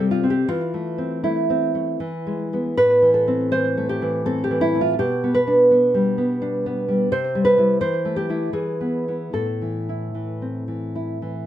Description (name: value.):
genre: romantic piece for solo classical guitar.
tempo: 72-86 BPM.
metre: 3/4.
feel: rubato.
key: A minor.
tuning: A4 = 439 Hz.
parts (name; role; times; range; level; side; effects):
nylon-string guitar; solo; 0.0-11.5 s; A2 to C5; -19 LUFS; equal; slapback echo.
room: little or no reverb.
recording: close, detailed microphones.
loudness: -18 LUFS.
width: side -12 dB against mid.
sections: 0.0-11.5 A section.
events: none.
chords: 0.5 Am/E; 2.0 E; 2.8 Am; 5.0 G/B; 7.1 C; 7.8 Am/E; 8.5 E; 9.3 Am.